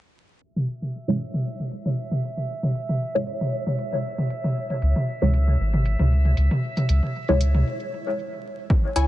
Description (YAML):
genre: dub techno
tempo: 116 BPM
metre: 4/4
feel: swing 54% on 16ths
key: C# minor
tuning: A4 = 440 Hz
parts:
  - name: drifting glass-harmonics texture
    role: texture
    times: 1.0-9.1 s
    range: E5 to G#5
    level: -35 LUFS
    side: right 3 dB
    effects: chorus, built-in reverb, sidechain pumping
  - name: electronic hi-hat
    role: drums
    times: 0.6-9.1 s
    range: none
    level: -34 LUFS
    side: equal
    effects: dub echo
  - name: electronic toms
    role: percussion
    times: 0.6-7.6 s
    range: none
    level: -26 LUFS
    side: equal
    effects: overdrive, sidechain pumping on toms
  - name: filtered dub chord stab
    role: stabs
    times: 1.1-7.4 s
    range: G#3 to C#5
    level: -29 LUFS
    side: equal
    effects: phaser, sidechain pumping, dub echo
  - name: soft dub sub bass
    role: bass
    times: 4.8-9.1 s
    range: G#1 to C#2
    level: -19 LUFS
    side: equal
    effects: sidechain pumping
  - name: electronic kick drum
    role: drums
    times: 8.7-8.8 s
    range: none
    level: -19 LUFS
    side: equal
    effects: none
  - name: wavetable chord stab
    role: riff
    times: 9.0-9.1 s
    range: E4 to G#5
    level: -21 LUFS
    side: left 3 dB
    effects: sidechain pumping
room: light reverb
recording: vinyl crackle, low-pass filter, nothing above 10.4 kHz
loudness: -21 LUFS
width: side -15 dB against mid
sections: 0.4-8.7 A section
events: filter sweep on synth stab 0.4-8.7; filter sweep 0.4-8.7; break 7.7-8.7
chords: 0.4 C#m